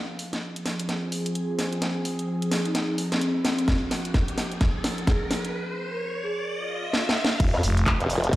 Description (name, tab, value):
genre	bass house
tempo	129 BPM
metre	4/4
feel	swing 60% on 16ths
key	F minor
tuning	A4 = 441 Hz
part	sweeping resonant pad	sustained chords	0.0-8.4 s	C3 to Ab4	-31 LUFS	equal	chorus, sidechain pumping
part	riser and swell	sound effects	0.0-7.4 s	none	-35 LUFS	equal	none
part	garage drum kit	drums	0.2-8.4 s	crash cymbal, handclaps, hi-hat, shaker, snare drum	-28 LUFS	equal	none
part	vibraphone with soft mallets	melody	1.4-6.4 s	C4 to Bb4	-31 LUFS	equal	tape echo
part	electronic kick drum	drums	3.7-8.4 s	none	-23 LUFS	equal	none
part	growling FM bass	bass	7.4-8.0 s	F1	-24 LUFS	equal	tube saturation, sidechain pumping
part	formant-sweep wobble bass	bass	7.5-8.4 s	F1 to F2	-22 LUFS	equal	chorus, tube saturation, sidechain pumping
room	moderate lush hall reverb, RT60 1.7 s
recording	played on a big sound system in a bare room, large studio reverb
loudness	-23 LUFS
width	side -16 dB against mid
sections	0.0-7.4 A section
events	build-up 0.0-7.4; drum fill 0.0-5.5, 6.9-7.4; riser 0.0-7.4; filter sweep on analog synth pad 0.0-7.4; swell 6.5-7.4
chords	0.0 Fm